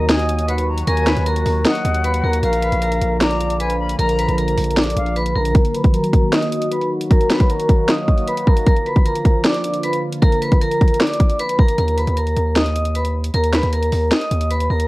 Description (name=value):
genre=hip hop, trap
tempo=154 BPM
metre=4/4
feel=half-time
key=Eb harmonic minor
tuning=A4 = 439 Hz
part: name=vibraphone with hard mallets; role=melody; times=0.0-14.9 s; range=Bb4 to Eb6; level=-21 LUFS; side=equal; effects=low-pass filter
part: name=jazz flute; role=second line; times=0.0-5.2 s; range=F5 to Cb6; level=-26 LUFS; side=left 3 dB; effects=tape echo
part: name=sweeping resonant pad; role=sustained chords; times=0.0-11.8 s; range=D3 to Gb4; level=-25 LUFS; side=equal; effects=chorus, phaser, low-pass filter
part: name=distorted 808-style bass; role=bass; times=0.0-5.5, 11.8-14.9 s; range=Bb1 to Eb2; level=-20 LUFS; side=equal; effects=distortion
part: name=trap drum kit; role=drums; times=0.1-14.9 s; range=hi-hat, kick drum, snare drum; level=-16 LUFS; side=equal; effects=overdrive
room=light reverb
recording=worn, warbling old tape, cassette tape, warbly pitch drift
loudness=-15 LUFS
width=side -20 dB against mid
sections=0.0-5.5 A section; 5.5-11.8 B section; 11.8-14.9 C section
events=filter sweep 5.5-11.8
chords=0.0 Ebm; 2.4 Bb; 5.5 Ebm; 8.7 Bb; 11.8 Eb5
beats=0.09 0.48 | 0.87 1.26 1.65 2.04 | 2.43 2.82 3.21 3.60 | 3.99 4.38 4.77 5.16 | 5.55 5.94 6.33 6.72 | 7.11 7.50 7.89 8.28 | 8.66 9.05 9.45 9.83 | 10.22 10.61 11.00 11.39 | 11.78 12.17 12.56 12.95 | 13.34 13.73 14.12 14.51